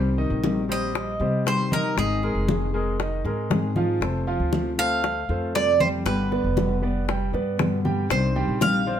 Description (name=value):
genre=latin, Cuban son and guajira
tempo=117 BPM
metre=4/4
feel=straight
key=C minor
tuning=A4 = 441 Hz
part: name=nylon-string guitar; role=accompaniment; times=0.0-9.0 s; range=B2 to Ab4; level=-28 LUFS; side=left 4 dB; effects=none
part: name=clear grand piano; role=arpeggios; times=0.0-9.0 s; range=Eb3 to G5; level=-28 LUFS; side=right 2 dB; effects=none
part: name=upright bass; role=bass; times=0.0-9.0 s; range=F1 to C3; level=-28 LUFS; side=equal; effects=none
part: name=congas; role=percussion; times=0.2-9.0 s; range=none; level=-29 LUFS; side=equal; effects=none
part: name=bongos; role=percussion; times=0.4-8.9 s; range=none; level=-30 LUFS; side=left 6 dB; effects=none
part: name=Cuban tres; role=melody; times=0.7-9.0 s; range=Ab4 to F5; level=-25 LUFS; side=right 3 dB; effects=none
room=moderate studio reverb, RT60 0.8 s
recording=none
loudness=-21 LUFS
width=side -9 dB against mid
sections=0.0-9.0 A section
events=none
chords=0.0 Cm; 2.0 Abadd9; 4.0 F; 6.1 G; 8.1 Cmadd9